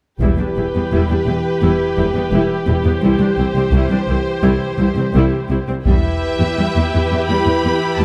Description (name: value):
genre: cinematic, epic orchestral film score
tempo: 85 BPM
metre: 4/4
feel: straight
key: E minor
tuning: A4 = 440 Hz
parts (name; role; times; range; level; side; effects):
- warm symphonic violin section; second line; 0.2-8.0 s; G4 to C5; -26 LUFS; equal; none
- rich symphonic viola section; accompaniment; 0.2-8.0 s; E3 to E4; -24 LUFS; equal; none
- dark French horn section; sustained chords; 0.2-8.0 s; E3 to G4; -25 LUFS; equal; none
- rich symphonic cello section; bass; 0.2-8.0 s; C2 to E2; -21 LUFS; equal; none
- rich symphonic double bass section; bass; 0.2-6.0 s; E1 to C2; -22 LUFS; equal; none
- solo taiko drums; drums; 0.2-1.6, 5.9-7.2 s; none; -22 LUFS; equal; none
- clear symphonic violin section; melody; 5.9-8.0 s; E5 to B5; -25 LUFS; equal; none
room: light reverb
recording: close, detailed microphones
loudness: -17 LUFS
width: mono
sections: 0.2-5.9 A section; 5.9-8.0 B section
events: none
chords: 0.2 Em; 3.0 C; 5.9 Em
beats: | 0.21 0.92 1.62 2.33 | 3.02 3.72 4.43 5.14 | 5.85 6.56 7.28 7.99